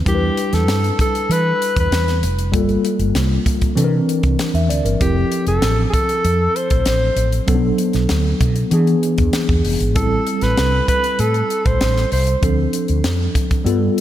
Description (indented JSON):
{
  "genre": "polished 1980s jazz-funk pop",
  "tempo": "97 BPM",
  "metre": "4/4",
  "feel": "straight",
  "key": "unclear",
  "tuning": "A4 = 440 Hz",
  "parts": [
    { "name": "mellow tine electric piano", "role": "accompaniment", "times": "0.0-14.0 s", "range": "E3 to E5", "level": "-20 LUFS", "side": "left 1 dB", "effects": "medium stereo tremolo, lush chorus" },
    { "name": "breathy alto saxophone", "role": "melody", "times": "0.1-12.4 s", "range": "G4 to C5", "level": "-20 LUFS", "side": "equal", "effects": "analog delay" },
    { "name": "mellow fretless electric bass", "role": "bass", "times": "0.1-13.9 s", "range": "F1 to E3", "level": "-18 LUFS", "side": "equal", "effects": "none" },
    { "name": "crisp fusion drum kit", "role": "drums", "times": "0.1-14.0 s", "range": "hi-hat, kick drum, snare drum", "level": "-21 LUFS", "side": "equal", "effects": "none" }
  ],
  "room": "moderate lush hall reverb, RT60 2.3 s",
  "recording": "dreamy mix soaked in reverb",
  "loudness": "-15 LUFS",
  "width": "side -12 dB against mid",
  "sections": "0.0-14.0 A section",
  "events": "none",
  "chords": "0.1 Em7; 2.5 Gm9; 3.8 C9; 5.0 Fmaj7; 7.5 Bm7; 8.7 E7; 10.0 Am7; 12.4 Dm7"
}